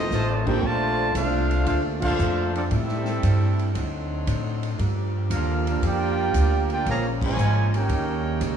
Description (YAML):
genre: jazz, big band swing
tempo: 116 BPM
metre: 4/4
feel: swing 69% on 8ths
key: Bb major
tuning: A4 = 441 Hz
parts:
  - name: bright trombone section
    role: second line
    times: 0.0-8.6 s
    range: C3 to G4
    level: -28 LUFS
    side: right 4 dB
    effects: none
  - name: warm trumpet section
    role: stabs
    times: 0.0-0.6 s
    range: F4 to Eb5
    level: -31 LUFS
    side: equal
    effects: none
  - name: upright bass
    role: bass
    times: 0.0-8.6 s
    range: Ab1 to A2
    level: -24 LUFS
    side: equal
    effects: none
  - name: warm trumpet section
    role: melody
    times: 0.1-8.6 s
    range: C4 to Bb5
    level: -28 LUFS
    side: right 1 dB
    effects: tape echo
  - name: swinging big-band drum kit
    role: drums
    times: 0.1-8.6 s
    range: crash cymbal, hi-hat, kick drum, ride cymbal, snare drum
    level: -32 LUFS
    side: left 1 dB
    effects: none
  - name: warm grand piano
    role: accompaniment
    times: 0.5-0.6 s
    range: Bb3 to Bb4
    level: -31 LUFS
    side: right 2 dB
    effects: none
  - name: warm saxophone section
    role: sustained chords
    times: 0.7-8.6 s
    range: Bb2 to G4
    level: -32 LUFS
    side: left 2 dB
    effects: none
room: light reverb, small room ambience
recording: small room reverb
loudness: -21 LUFS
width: side -8 dB against mid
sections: 0.6-8.6 A section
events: band accent 1.9, 7.1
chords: 0.0 F7; 0.6 Bbmaj9; 2.7 Am7; 3.7 D7b9; 4.8 Gm9; 6.9 Bbm9; 7.9 Eb7